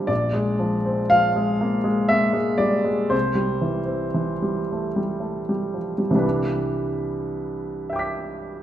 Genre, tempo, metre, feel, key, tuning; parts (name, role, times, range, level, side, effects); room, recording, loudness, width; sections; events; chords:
classical, impressionist solo piano; 56-73 BPM; 3/4; rubato; A4 = 441 Hz
clear baby grand piano; solo; 0.0-8.6 s; Bb1 to B6; -20 LUFS; equal
wet recital hall reverb, RT60 1.5 s; recorded in a church or concert hall; -20 LUFS; side -11 dB against mid
0.0-6.2 A section; 6.2-8.6 B section
0.1 Bb9; 3.1 C; 6.2 Cmaj9